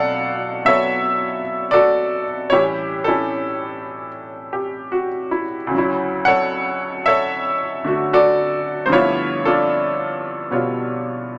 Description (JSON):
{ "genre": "solo jazz", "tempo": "75 BPM", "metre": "4/4", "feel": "swing 68% on 8ths", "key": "unclear", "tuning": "A4 = 442 Hz", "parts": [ { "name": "bright upright piano", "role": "solo", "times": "0.0-11.4 s", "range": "D2 to F#5", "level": "-20 LUFS", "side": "equal", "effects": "none" } ], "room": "wet club reverb, RT60 0.6 s", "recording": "none", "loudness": "-19 LUFS", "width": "mono", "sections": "0.0-11.4 A section", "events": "none", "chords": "0.0 Bm11; 2.5 A7; 5.7 Dmaj9; 8.9 G13" }